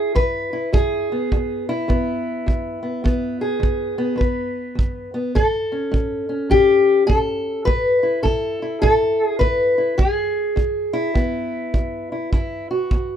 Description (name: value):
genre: acoustic country blues, solo or duo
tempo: 104 BPM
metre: 4/4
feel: swing 64% on 8ths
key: E major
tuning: A4 = 443 Hz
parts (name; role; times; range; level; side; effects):
- fingerpicked steel-string acoustic guitar; melody; 0.0-13.2 s; E2 to B4; -19 LUFS; left 1 dB; none
- kick drum; drums; 0.2-13.1 s; none; -21 LUFS; right 1 dB; none
room: light reverb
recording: minimal, uncompressed stereo recording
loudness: -18 LUFS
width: side -9 dB against mid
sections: 0.0-13.2 A section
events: none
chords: 0.0 E; 5.4 A; 10.0 E